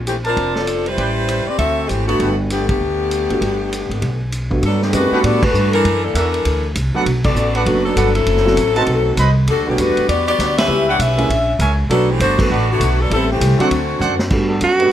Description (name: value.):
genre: jazz, big band swing.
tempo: 198 BPM.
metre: 4/4.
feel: swing 62% on 8ths.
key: G major.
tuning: A4 = 443 Hz.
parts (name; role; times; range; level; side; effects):
upright bass; bass; 0.0-14.9 s; F1 to A2; -19 LUFS; equal; none.
bright saxophone section; melody; 0.1-14.2 s; D3 to F#5; -18 LUFS; left 2 dB; none.
vintage drum kit; drums; 0.1-14.9 s; crash cymbal, hi-hat, kick drum, ride cymbal, snare drum, toms; -24 LUFS; equal; none.
warm trumpet section; stabs; 0.2-2.3, 5.1-14.1 s; F#4 to B5; -22 LUFS; right 3 dB; none.
warm concert grand piano; accompaniment; 2.1-14.9 s; G2 to B4; -20 LUFS; right 1 dB; none.
bright trombone section; sustained chords; 14.5-14.9 s; G3 to B4; -24 LUFS; equal; none.
edgy alto saxophone; melody; 14.6-14.9 s; F#4; -12 LUFS; right 3 dB; none.
room: light reverb.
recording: none.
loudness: -14 LUFS.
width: side -11 dB against mid.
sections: 0.0-4.6 A section; 4.6-14.3 B section.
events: band accent 2.7, 5.4, 7.2, 10.5, 12.3; drum fill 14.0-14.3.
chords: 0.0 Bbmaj9; 1.0 Am11; 1.6 D9; 2.2 Gmaj9; 5.8 F#7alt; 7.1 Bm7; 8.3 F#m7b5; 8.9 B7b9; 9.5 Em11; 10.7 C#m7b5; 11.3 A#m7b5; 11.9 Bm7; 13.1 Am7; 13.7 D7; 14.3 Gmaj9.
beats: 0.07 0.37 0.67 | 0.98 1.28 1.59 1.89 | 2.19 2.50 2.80 3.11 | 3.41 3.72 4.02 4.32 | 4.63 4.93 5.24 5.54 | 5.84 6.14 6.45 6.75 | 7.05 7.36 7.66 7.96 | 8.27 8.57 8.87 9.17 | 9.48 9.78 10.08 10.38 | 10.69 10.99 11.29 11.59 | 11.90 12.20 12.50 12.80 | 13.11 13.41 13.71 14.01 | 14.31 14.62 14.92.